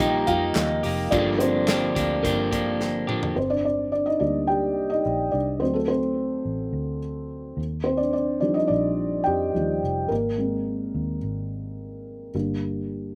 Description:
piano-driven pop; 107 BPM; 4/4; straight; G minor; A4 = 440 Hz
felt-muted upright piano; accompaniment; 0.0-13.2 s; F3 to Bb5; -26 LUFS; equal; slapback echo
electric guitar at the edge of break-up; riff; 0.0-3.9 s; G2 to G4; -29 LUFS; equal
vintage muted fingered electric bass; bass; 0.0-13.1 s; F1 to F2; -34 LUFS; equal
modern studio drum kit; drums; 0.0-3.4 s; handclaps, hi-hat, kick drum, snare drum, toms; -32 LUFS; equal
little or no reverb; -25 LUFS; mono
0.0-3.4 A section; 3.4-13.2 B section
felt piano solo 0.0-3.4, 3.4-13.2; drum fill 2.8-3.4
0.0 Ebadd9; 1.1 Gm7; 3.4 Gm; 5.6 D7; 7.6 Ebadd9; 10.1 Abadd9; 12.3 Gm

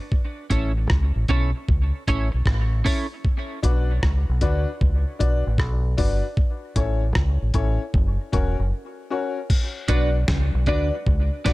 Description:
dub reggae; 77 BPM; 4/4; swing 63% on 16ths; B minor; A4 = 440 Hz
dusty soul sampler-style drum kit; drums; 0.1-11.5 s; crash cymbal, hi-hat, kick drum, rim click, snare drum; -22 LUFS; equal; overdrive
clean electric guitar; accompaniment; 0.5-3.1, 9.9-11.5 s; C#4 to D5; -30 LUFS; right 3 dB; analog chorus, dub echo
deep dub fingered electric bass; bass; 0.5-11.5 s; E1 to D2; -22 LUFS; equal
clear upright piano; stabs; 3.6-11.5 s; C#4 to D5; -28 LUFS; left 4 dB; dub echo
little or no reverb; -20 LUFS; side -19 dB against mid
0.0-9.5 A section; 9.5-11.5 B section
break 0.0-3.2, 8.7-9.5
0.1 A; 3.2 Bm; 6.4 A; 7.9 F#; 9.5 Bm

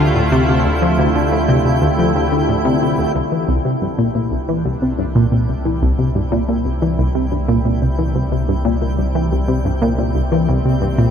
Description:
ambient, sequencer-driven space music; 90 BPM; 4/4; straight; A4 = 440 Hz
sweeping resonant pad; sustained chords; 0.0-11.1 s; C3 to F4; -21 LUFS; right 1 dB; chorus
tight sequenced synth; riff; 0.0-11.1 s; C2 to F3; -16 LUFS; left 1 dB; chorus, ping-pong delay
warm sub bass; bass; 0.0-11.1 s; C2 to D2; -22 LUFS; equal
twinkling granular texture; texture; 0.0-11.1 s; G4 to G5; -30 LUFS; left 2 dB; built-in reverb
wet cathedral reverb, RT60 7.0 s; in a vast, echoing space; -14 LUFS; side -8 dB against mid
0.0-3.2 A section; 3.2-11.1 B section
fade-in on analog synth pad 3.2-11.1; fade-in on synth texture 3.2-11.1
0.0 Dm; 3.2 C

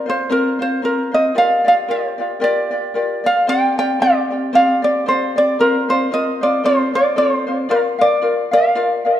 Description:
Hawaiian; 114 BPM; 4/4; swing 56% on 8ths; Bb major; A4 = 443 Hz
ukulele; melody; 0.0-9.0 s; Bb4 to G5; -16 LUFS; right 1 dB; tape echo
ukulele; accompaniment; 0.0-9.2 s; C4 to F5; -19 LUFS; left 2 dB
wet recital hall reverb, RT60 1.5 s; -14 LUFS; side -11 dB against mid
0.0-9.2 A section
0.0 Bbsus2; 1.4 Gm7; 3.5 Csus2; 5.6 Fsus4; 6.6 F; 7.7 Bb

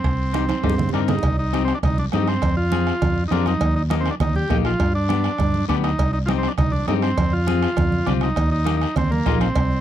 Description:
latin, cumbia; 202 BPM; 4/4; straight; C minor; A4 = 441 Hz
combo organ; melody; 0.0-9.8 s; Bb3 to G4; -25 LUFS; right 1 dB
fingered electric bass; bass; 0.0-9.8 s; Bb1 to G2; -22 LUFS; equal
bombo; percussion; 0.0-9.7 s; -25 LUFS; right 2 dB
guiro; percussion; 0.0-9.8 s; -40 LUFS; left 23 dB
timbales and cowbell; percussion; 0.0-9.7 s; -30 LUFS; right 7 dB
congas; percussion; 0.2-9.8 s; -28 LUFS; right 4 dB
semi-hollow electric guitar; accompaniment; 0.3-9.5 s; Bb3 to Bb4; -24 LUFS; left 18 dB
little or no reverb; dry, close 1970s-style studio recording; -18 LUFS; side -11 dB against mid
0.0-1.2 A section; 1.2-9.8 B section
drum fill 0.3-1.2
0.0 Cm; 2.4 Fm; 3.6 Eb; 4.8 G; 6.0 Cm; 7.2 Fm; 8.4 Eb

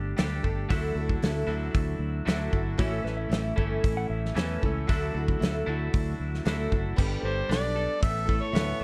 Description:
folk rock and heartland rock; 115 BPM; 4/4; straight; D major; A4 = 440 Hz
picked old ladder-braced acoustic guitar; accompaniment; 0.0-8.8 s; A2 to A4; -36 LUFS; equal
twelve-string electric guitar; riff; 0.0-8.8 s; A2 to A4; -37 LUFS; equal
fingered electric bass; bass; 0.0-8.8 s; F#1 to E2; -33 LUFS; equal
natural country drum kit; drums; 0.2-8.7 s; crash cymbal, hi-hat, kick drum, snare drum; -30 LUFS; equal
clean lap steel guitar; second line; 2.8-5.7 s; F#4 to F#5; -39 LUFS; equal
overdriven harmonica; melody; 7.2-8.8 s; C5 to E5; -32 LUFS; equal
little or no reverb; dark, warm production; -28 LUFS; mono
0.0-7.0 A section; 7.0-8.8 B section
0.0 Gsus2; 0.7 Dadd9; 2.8 A; 4.9 Dadd9; 7.0 Gadd9; 8.0 Aadd9

